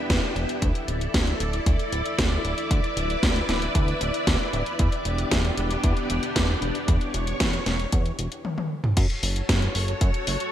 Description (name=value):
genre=italo disco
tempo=115 BPM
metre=4/4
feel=straight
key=E dorian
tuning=A4 = 441 Hz
part: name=string machine, full ensemble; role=sustained chords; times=0.0-10.5 s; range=B3 to E5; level=-28 LUFS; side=equal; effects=ensemble chorus
part: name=chorused synth bass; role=bass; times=0.1-10.4 s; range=D1 to F#2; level=-27 LUFS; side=equal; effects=none
part: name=electronic kick drum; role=drums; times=0.1-10.1 s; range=none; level=-24 LUFS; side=equal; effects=none
part: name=house drum kit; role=drums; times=0.1-10.5 s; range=crash cymbal, hi-hat, snare drum, toms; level=-27 LUFS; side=equal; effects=gated reverb
room=light reverb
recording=bright 1980s-style digital production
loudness=-22 LUFS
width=side -11 dB against mid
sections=0.0-9.0 A section; 9.0-10.5 B section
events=drum fill 8.4-9.0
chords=0.0 Em7; 0.6 Dsus2; 4.8 Em7; 9.0 F#m